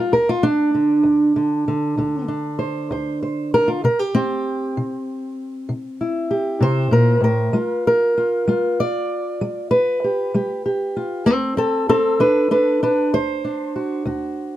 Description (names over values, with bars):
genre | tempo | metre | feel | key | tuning
acoustic country blues, solo or duo | 64 BPM (dotted quarters) | 12/8 | straight | unclear | A4 = 444 Hz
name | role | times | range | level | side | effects
fingerpicked old ladder-braced acoustic guitar | solo | 0.0-14.6 s | D2 to D5 | -17 LUFS | equal | none
room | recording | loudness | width
moderate studio reverb, RT60 0.6 s | none | -17 LUFS | side -13 dB against mid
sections
0.0-14.6 A section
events
none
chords
0.1 D7(no3); 3.8 C7; 7.5 G7; 11.3 D7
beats
| 0.11 1.04 1.97 2.89 | 3.82 4.75 5.68 6.61 | 7.54 8.47 9.40 10.33 | 11.26 12.20 13.13 14.06